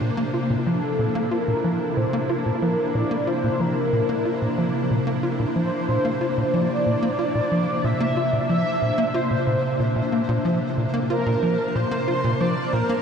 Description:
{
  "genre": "ambient, sequencer-driven space music",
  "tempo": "92 BPM",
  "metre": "4/4",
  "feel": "straight",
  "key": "Bb lydian",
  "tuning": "A4 = 440 Hz",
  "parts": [
    { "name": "evolving wavetable pad", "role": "sustained chords", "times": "0.0-13.0 s", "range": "C3 to A5", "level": "-26 LUFS", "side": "left 1 dB", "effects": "ensemble chorus, built-in reverb, shimmer reverb" },
    { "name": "tight sequencer bass", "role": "riff", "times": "0.0-13.0 s", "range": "Bb2 to F4", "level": "-24 LUFS", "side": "equal", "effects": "analog chorus, analog delay" },
    { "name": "pulsing gated texture", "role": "texture", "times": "0.0-13.0 s", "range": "C5", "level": "-35 LUFS", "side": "right 3 dB", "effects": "chorus, built-in reverb, shimmer reverb" },
    { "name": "mellow horn-like synth lead", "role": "melody", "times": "0.7-13.0 s", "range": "A4 to E5", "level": "-26 LUFS", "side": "equal", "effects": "ensemble chorus, shimmer reverb, analog delay" }
  ],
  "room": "wet huge ambient reverb, RT60 7.3 s",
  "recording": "dark, warm production",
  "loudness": "-20 LUFS",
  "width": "side -7 dB against mid",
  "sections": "0.0-13.0 A section",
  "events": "none",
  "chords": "0.0 Bbadd9"
}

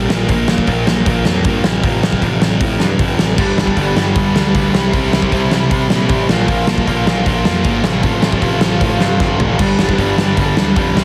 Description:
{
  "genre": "punk rock",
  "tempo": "155 BPM",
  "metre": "4/4",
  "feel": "straight",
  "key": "unclear",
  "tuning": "A4 = 440 Hz",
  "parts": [
    { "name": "sludgy distorted guitar", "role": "riff", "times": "0.0-11.0 s", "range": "F2 to C4", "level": "-20 LUFS", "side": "equal", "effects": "overdrive" },
    { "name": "fuzz picked electric bass", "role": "bass", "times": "0.0-11.0 s", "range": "G1 to C3", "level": "-22 LUFS", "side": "equal", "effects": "overdrive" },
    { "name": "big rock drum kit", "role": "drums", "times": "0.1-11.0 s", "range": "crash cymbal, hi-hat, kick drum, snare drum, toms", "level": "-19 LUFS", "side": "equal", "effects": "none" },
    { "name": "tight distorted guitar", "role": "riff", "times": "3.4-11.0 s", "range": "G2 to F4", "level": "-22 LUFS", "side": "equal", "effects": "distortion" }
  ],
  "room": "light reverb",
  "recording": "heavily compressed radio sound, multiband compression",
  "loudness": "-15 LUFS",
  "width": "mono",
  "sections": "0.0-11.0 A section",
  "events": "drum fill 9.2-9.6",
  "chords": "0.1 Bb5; 1.6 F/A; 3.4 G; 4.7 C; 6.3 Bb; 7.8 F/A; 9.6 G"
}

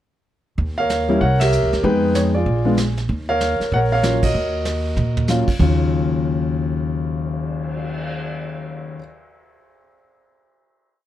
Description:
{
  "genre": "jazz piano trio",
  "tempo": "192 BPM",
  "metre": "4/4",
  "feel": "swing 63% on 8ths",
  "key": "Eb minor",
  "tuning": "A4 = 440 Hz",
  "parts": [
    { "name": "upright bass", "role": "bass", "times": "0.6-8.9 s", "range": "Bb1 to Bb2", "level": "-22 LUFS", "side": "right 1 dB", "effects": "none" },
    { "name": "vintage brush drum kit", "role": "drums", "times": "0.6-8.0 s", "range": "brushed snare drum, crash cymbal, cymbal swell, hi-hat, kick drum, ride cymbal, snare drum, toms", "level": "-27 LUFS", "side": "right 2 dB", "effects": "none" },
    { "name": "warm concert grand piano", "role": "melody", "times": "0.8-9.0 s", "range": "Eb2 to G5", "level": "-20 LUFS", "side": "left 1 dB", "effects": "none" }
  ],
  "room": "light reverb",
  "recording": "dark, warm production",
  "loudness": "-17 LUFS",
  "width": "side -12 dB against mid",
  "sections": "0.6-5.6 A section; 5.6-8.1 final chord",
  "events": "band accent 1.4, 4.2; drum fill 5.0-5.3",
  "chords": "0.6 Ebsus2; 1.2 C7b9; 1.8 Fm7b5; 2.5 Bb7; 3.1 Ebm9"
}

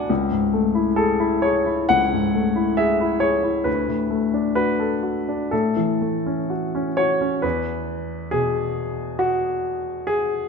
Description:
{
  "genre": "neoclassical minimalist piano",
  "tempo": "61-70 BPM",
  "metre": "4/4",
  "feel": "rubato",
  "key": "A major",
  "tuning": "A4 = 440 Hz",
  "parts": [
    { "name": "clear baby grand piano", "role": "solo", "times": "0.0-10.5 s", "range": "C#2 to A5", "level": "-19 LUFS", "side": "left 2 dB", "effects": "none" }
  ],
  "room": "moderate scoring stage reverb, RT60 1.5 s",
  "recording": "minimal, uncompressed stereo recording",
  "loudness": "-19 LUFS",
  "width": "side -5 dB against mid",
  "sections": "0.0-7.4 A section; 7.4-10.5 B section",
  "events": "none",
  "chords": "0.1 Amaj7/C#; 3.7 Bm7/D; 5.5 A6; 7.4 E"
}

